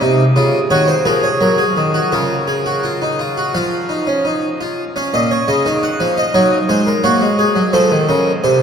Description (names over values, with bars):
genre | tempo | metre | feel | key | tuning
classical, baroque-style 3-part fugue for harpsichord | 86 BPM | 4/4 | straight | Bb minor | A4 = 439 Hz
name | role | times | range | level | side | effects
harpsichord | solo | 0.0-8.6 s | Bb2 to Gb5 | -13 LUFS | equal | none
room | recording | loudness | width
wet cathedral reverb, RT60 5.8 s | in a vast, echoing space | -13 LUFS | side -7 dB against mid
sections
0.0-5.0 A section; 5.0-8.6 B section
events
none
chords
0.0 Ebm; 2.1 Bbm/Db; 3.5 Dbadd9/F; 5.0 Bbm; 6.4 Ebm/Gb; 7.7 F7